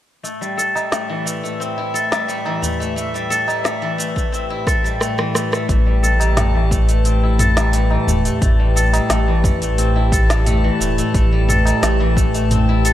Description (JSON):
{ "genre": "organic downtempo", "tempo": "88 BPM", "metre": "4/4", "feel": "straight", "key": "A minor", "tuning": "A4 = 440 Hz", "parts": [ { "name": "warm analog pad", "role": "sustained chords", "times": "0.2-12.9 s", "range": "A2 to B4", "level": "-24 LUFS", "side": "equal", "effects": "chorus, sidechain pumping" }, { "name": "steel-string zither", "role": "arpeggios", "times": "0.2-12.9 s", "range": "E3 to A4", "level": "-21 LUFS", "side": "left 2 dB", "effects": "low-pass filter, digital delay" }, { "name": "organic electronic drum kit", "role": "drums", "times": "0.2-12.9 s", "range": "hi-hat, rim click, shaker, snare drum, toms", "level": "-23 LUFS", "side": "equal", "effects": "none" }, { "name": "drifting glass-harmonics texture", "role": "texture", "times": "0.7-12.9 s", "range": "E5 to A5", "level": "-30 LUFS", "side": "left 2 dB", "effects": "chorus, built-in reverb" }, { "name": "tabla", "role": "percussion", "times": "0.8-12.5 s", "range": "none", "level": "-27 LUFS", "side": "right 2 dB", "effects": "none" }, { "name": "electronic kick drum", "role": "drums", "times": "4.2-12.3 s", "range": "none", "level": "-19 LUFS", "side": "equal", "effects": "overdrive" }, { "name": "warm sub bass", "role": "bass", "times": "5.7-12.9 s", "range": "E1 to A1", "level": "-17 LUFS", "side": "equal", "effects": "tube saturation" } ], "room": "light reverb", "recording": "none", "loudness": "-15 LUFS", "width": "side -13 dB against mid", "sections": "0.2-5.7 A section; 5.7-12.9 B section", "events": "filter sweep on analog synth pad 0.2-5.7; drum fill 4.7-5.7; kick drops out 5.0-5.7", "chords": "0.2 Am7" }